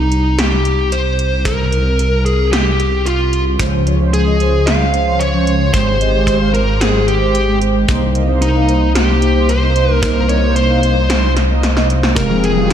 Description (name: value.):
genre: synthwave.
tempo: 112 BPM.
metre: 4/4.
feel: straight.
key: C phrygian.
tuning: A4 = 440 Hz.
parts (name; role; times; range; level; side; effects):
smooth overdriven lead guitar; melody; 0.0-12.7 s; Eb4 to F5; -17 LUFS; left 1 dB; ping-pong delay.
dark detuned saw bass; bass; 0.0-12.7 s; F1 to Db2; -15 LUFS; equal; none.
80s electronic pad drums; drums; 0.1-12.7 s; hi-hat, snare drum; -20 LUFS; equal; high-pass filter on snare, high-pass filter on hats.
kick drum; drums; 1.5-12.3 s; none; -21 LUFS; equal; none.
mellow synth brass; stabs; 3.6-12.7 s; F3 to G5; -18 LUFS; right 1 dB; chorus, tape echo.
warm analog pad; sustained chords; 12.2-12.7 s; F3 to G5; -17 LUFS; left 2 dB; chorus, sidechain pumping.
thumb-piano-like synth pluck; arpeggios; 12.2-12.7 s; C3 to G3; -20 LUFS; left 2 dB; chorus, tape echo.
riser; sound effects; 12.5-12.7 s; none; -24 LUFS; left 2 dB; none.
room: moderate lush hall reverb, RT60 1.6 s, digital ambience.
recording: dreamy mix soaked in reverb.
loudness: -12 LUFS.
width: side -9 dB against mid.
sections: 0.0-12.2 A section.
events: drum fill 11.4-12.2.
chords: 0.0 C7(no3); 3.6 Dbmaj7; 5.7 Abmaj7; 7.9 Cm7; 12.2 Fmadd9.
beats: 0.38 0.92 | 1.46 1.99 2.53 3.06 | 3.60 4.13 4.67 5.21 | 5.74 6.28 6.81 7.35 | 7.88 8.42 8.96 9.49 | 10.03 10.56 11.10 11.63 | 12.17 12.71.